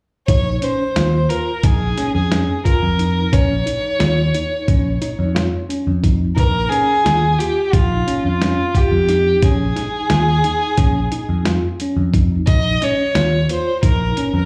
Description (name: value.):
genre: progressive instrumental, band music in an uneven meter.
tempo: 177 BPM (eighths).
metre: 9/8.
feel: straight.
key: Bb dorian.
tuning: A4 = 443 Hz.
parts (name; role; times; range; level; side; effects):
dark violin; melody; 0.3-14.5 s; F4 to Eb5; -22 LUFS; equal; plate reverb, slapback echo, tape echo.
tine electric piano; arpeggios; 0.3-14.4 s; Db4 to F4; -27 LUFS; equal; overdrive, plate reverb, slapback echo.
picked electric bass; bass; 0.3-14.5 s; Bb1 to F2; -20 LUFS; equal; none.
dusty soul sampler-style drum kit; drums; 0.3-14.3 s; hi-hat, kick drum, snare drum; -21 LUFS; equal; none.
room: light reverb.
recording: live gig heard through the venue's PA, club reverb.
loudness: -17 LUFS.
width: mono.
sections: 0.3-14.5 A section.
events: none.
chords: 0.3 Bbm7.